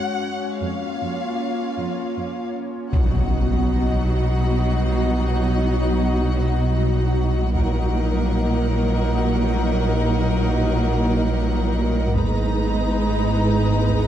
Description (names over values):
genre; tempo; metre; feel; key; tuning
cinematic, hybrid orchestral and electronic film score; 52 BPM (dotted quarters); 6/8; straight; unclear; A4 = 444 Hz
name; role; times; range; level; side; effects
rich studio violin section; melody; 0.0-2.5 s; F5 to Gb5; -29 LUFS; left 5 dB; none
airy breathy pad; sustained chords; 0.0-14.1 s; F#3 to Bb5; -26 LUFS; equal; chorus
warm symphonic cello section; bass; 0.6-14.1 s; F2 to B2; -24 LUFS; right 2 dB; none
warm symphonic violin section; second line; 2.9-14.1 s; F#4 to Bb5; -29 LUFS; left 4 dB; none
warm symphonic viola section; accompaniment; 2.9-14.1 s; F#3 to D#4; -25 LUFS; right 1 dB; none
pure sine sub bass; bass; 2.9-14.1 s; Ab1 to B1; -23 LUFS; equal; none
taiko ensemble; drums; 2.9-14.1 s; none; -28 LUFS; equal; none
impact; sound effects; 2.9-5.2 s; none; -26 LUFS; equal; none
room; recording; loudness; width
moderate concert hall reverb, RT60 2.3 s; dark, warm production; -19 LUFS; side -10 dB against mid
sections
0.0-2.9 A section; 2.9-14.1 B section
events
impact 2.9-5.2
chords
0.0 Gbsus2; 0.6 Bbm/F; 2.9 B; 7.5 Ebm/Bb; 12.2 Abmadd9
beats
| 0.62 1.78 | 2.93 4.08 | 5.24 6.39 | 7.55 8.70 | 9.86 11.01 | 12.16 13.32